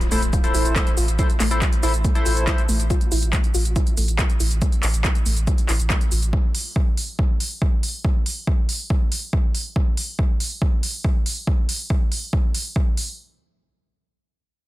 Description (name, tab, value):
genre	driving peak-time techno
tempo	140 BPM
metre	4/4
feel	straight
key	A minor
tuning	A4 = 440 Hz
part	techno drum kit	drums	0.0-13.1 s	handclaps, hi-hat, shaker	-26 LUFS	equal	overdrive
part	impact	sound effects	0.0-1.2 s	none	barely audible	none	none
part	warbly dusty pluck	riff	0.1-6.2 s	A3 to F4	-30 LUFS	left 1 dB	chorus, sidechain pumping, tape echo
part	sync-sweep polysynth	stabs	0.1-2.6 s	E4 to C5	-26 LUFS	left 2 dB	chorus, sidechain pumping, ping-pong delay
part	saturated sub bass	bass	0.1-6.3 s	A1	-21 LUFS	equal	sidechain pumping, low-pass filter
part	electronic kick drum	drums	0.3-12.8 s	none	-20 LUFS	equal	overdrive
room	little or no reverb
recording	dense, heavily limited modern master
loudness	-19 LUFS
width	side -17 dB against mid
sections	0.0-13.2 A section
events	impact 0.0-1.2; filter sweep on synth arpeggio sound 0.0-6.3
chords	0.0 Am